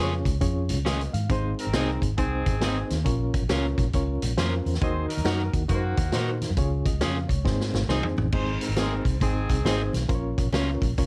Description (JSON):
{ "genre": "uptempo 1960s-style soul", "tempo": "136 BPM", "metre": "4/4", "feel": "swing 64% on 8ths", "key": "Ab mixolydian", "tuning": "A4 = 440 Hz", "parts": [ { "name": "barky reed electric piano", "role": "accompaniment", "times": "0.0-11.1 s", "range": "Ab2 to Gb5", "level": "-32 LUFS", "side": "equal", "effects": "overdrive, fast tremolo" }, { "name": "electric guitar at the edge of break-up", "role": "stabs", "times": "0.0-10.7 s", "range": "C4 to Bb4", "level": "-33 LUFS", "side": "equal", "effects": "none" }, { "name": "vintage muted fingered electric bass", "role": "bass", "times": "0.0-11.1 s", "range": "Ab1 to Bb2", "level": "-30 LUFS", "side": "equal", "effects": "none" }, { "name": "vintage drum kit", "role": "drums", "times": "0.3-11.1 s", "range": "crash cymbal, hi-hat, kick drum, snare drum, toms", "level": "-30 LUFS", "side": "equal", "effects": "none" }, { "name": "congas", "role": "percussion", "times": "0.3-11.1 s", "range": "none", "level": "-39 LUFS", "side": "equal", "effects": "none" }, { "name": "clear horn section", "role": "second line", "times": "1.3-9.9 s", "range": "Eb3 to C5", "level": "-36 LUFS", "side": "equal", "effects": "none" } ], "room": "light reverb", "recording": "vinyl crackle", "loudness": "-25 LUFS", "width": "mono", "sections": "0.0-8.3 A section; 8.3-11.1 A section", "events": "drum fill 7.5-8.3", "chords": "0.0 Db; 1.3 Ab; 3.0 Bbm; 4.8 Ebm; 6.6 Db; 7.5 Ab; 10.1 Bbm" }